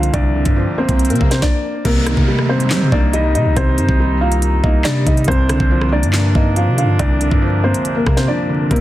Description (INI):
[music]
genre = hip hop, drill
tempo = 140 BPM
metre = 4/4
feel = half-time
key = C minor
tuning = A4 = 440 Hz
[part]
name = dark concert grand piano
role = melody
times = 0.0-8.8 s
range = Bb3 to F5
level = -19 LUFS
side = left 1 dB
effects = tape echo
[part]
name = felt-muted upright piano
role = accompaniment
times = 0.0-8.8 s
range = C2 to Bb3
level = -21 LUFS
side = right 1 dB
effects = none
[part]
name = long sustained 808-style bass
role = bass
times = 0.0-8.8 s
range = C2 to G3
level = -17 LUFS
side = equal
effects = none
[part]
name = drill drum kit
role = drums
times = 0.0-8.8 s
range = crash cymbal, handclaps, hi-hat, kick drum, rim click, snare drum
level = -17 LUFS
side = equal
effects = none
[part]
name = swell and downlifter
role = sound effects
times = 0.3-5.3 s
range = none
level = -27 LUFS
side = right 4 dB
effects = none
[part]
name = dark brass ensemble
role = sustained chords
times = 1.9-8.8 s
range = C3 to Eb4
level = -26 LUFS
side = equal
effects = none
[sound]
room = little or no reverb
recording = dense, heavily limited modern master, vinyl crackle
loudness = -13 LUFS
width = side -14 dB against mid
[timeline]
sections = 0.0-1.9 A section; 1.9-8.8 B section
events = swell 0.3-1.9; stop 1.4-1.9; drums muted 8.3-8.7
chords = 0.0 C7(no3); 1.9 Cm7